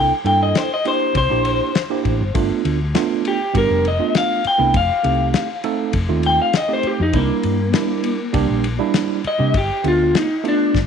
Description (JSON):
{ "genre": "straight-eighth soul blues", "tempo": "100 BPM", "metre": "4/4", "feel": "straight", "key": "unclear", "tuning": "A4 = 442 Hz", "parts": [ { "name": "electric guitar through a small old amp", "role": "melody", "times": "0.0-10.8 s", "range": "Bb3 to G5", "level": "-19 LUFS", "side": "left 3 dB", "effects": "none" }, { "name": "tine electric piano", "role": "accompaniment", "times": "0.0-10.8 s", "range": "G3 to A4", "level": "-22 LUFS", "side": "right 12 dB", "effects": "overdrive, fast stereo tremolo" }, { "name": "hollow-body short-scale fingered electric bass", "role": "bass", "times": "0.0-10.9 s", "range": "F1 to C3", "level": "-20 LUFS", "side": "left 1 dB", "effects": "none" }, { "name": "cloth-damped thuddy drum kit", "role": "drums", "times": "0.3-10.9 s", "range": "kick drum, ride cymbal, snare drum", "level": "-24 LUFS", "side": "left 4 dB", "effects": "none" } ], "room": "light reverb, small room ambience", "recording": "1960s-style stereo", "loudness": "-16 LUFS", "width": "side -7 dB against mid", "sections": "0.0-10.9 A section", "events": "clean electric guitar solo 0.0-10.9", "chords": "0.0 C9; 2.3 G9; 4.7 F9; 7.1 C9; 9.5 G9", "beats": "0.55 1.15 1.75 | 2.35 2.95 3.55 4.15 | 4.75 5.34 5.95 6.54 | 7.14 7.74 8.34 8.95 | 9.54 10.14 10.75" }